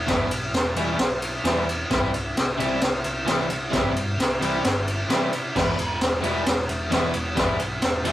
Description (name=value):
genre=garage rock duo or trio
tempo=132 BPM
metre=4/4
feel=straight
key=E minor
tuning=A4 = 441 Hz
part: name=hollow-body short-scale picked electric bass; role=bass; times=0.0-8.1 s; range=E1 to C3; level=-32 LUFS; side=equal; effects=tube saturation
part: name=overdriven electric guitar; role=riff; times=0.1-8.1 s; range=E2 to E4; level=-26 LUFS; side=equal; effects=none
part: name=raw garage drum kit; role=drums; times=0.1-8.1 s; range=crash cymbal, kick drum, ride cymbal, snare drum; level=-23 LUFS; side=equal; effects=none
room=light reverb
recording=rough rehearsal-room recording, warm saturation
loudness=-21 LUFS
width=side -14 dB against mid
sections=0.0-8.1 A section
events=none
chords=0.0 Em; 1.9 C; 5.6 Em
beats=| 0.09 0.54 1.00 1.45 | 1.91 2.36 2.82 3.27 | 3.73 4.18 4.64 5.10 | 5.55 6.01 6.46 6.92 | 7.38 7.83